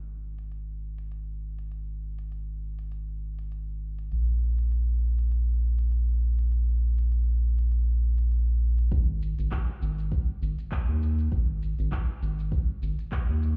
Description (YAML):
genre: organic downtempo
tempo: 100 BPM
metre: 4/4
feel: swing 56% on 16ths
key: unclear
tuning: A4 = 440 Hz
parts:
  - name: round analog bass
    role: bass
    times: 0.0-13.6 s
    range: G#1 to D#2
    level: -28 LUFS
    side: equal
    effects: sidechain pumping
  - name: deep house drum kit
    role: drums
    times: 0.4-13.6 s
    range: handclaps, hi-hat, shaker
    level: -46 LUFS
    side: equal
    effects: low-pass filter on perc, small room ambience, low-pass filter on hats, low-pass filter on snare, low-pass filter on toms
  - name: electronic kick drum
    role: drums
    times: 8.9-13.3 s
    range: none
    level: -30 LUFS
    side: equal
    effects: small room ambience
room: digital ambience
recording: heard muffled through a wall, club reverb, EQ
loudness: -28 LUFS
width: mono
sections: 0.0-8.9 A section; 8.9-13.6 B section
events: none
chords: none